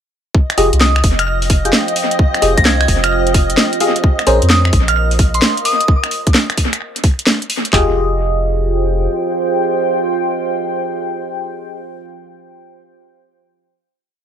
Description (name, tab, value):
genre	UK garage, two-step garage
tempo	130 BPM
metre	4/4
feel	swing 67% on 16ths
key	F minor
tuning	A4 = 440 Hz
part	soft string machine	sustained chords	0.3-5.9 s	Eb5	-23 LUFS	left 1 dB	ensemble chorus, sidechain pumping
part	garage drum kit	drums	0.3-7.9 s	handclaps, kick drum, toms	-13 LUFS	equal	none
part	deep dark ambient pad	texture	1.3-12.0 s	F4 to G5	-21 LUFS	right 3 dB	chorus, built-in reverb, sidechain pumping
part	garage drum kit	drums	0.5-7.7 s	finger snaps, hi-hat, snare drum	-16 LUFS	equal	analog delay
part	FM electric piano	stabs	0.6-4.4, 7.7-11.8 s	Db4 to G5	-18 LUFS	left 1 dB	chorus, phaser, vintage 12-bit sampler grit, analog delay
part	soft dub sub bass	bass	0.6-9.1 s	F1 to F2	-16 LUFS	equal	none
part	glassy synth bell	melody	0.8-5.9 s	C6 to Bb6	-19 LUFS	right 1 dB	chorus, analog delay
room	light reverb, digital ambience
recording	echo-heavy mix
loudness	-12 LUFS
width	side -9 dB against mid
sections	0.3-7.7 groove; 7.7-11.4 final chord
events	none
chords	0.3 F7sus2; 4.0 Bbsus2; 7.7 Fm9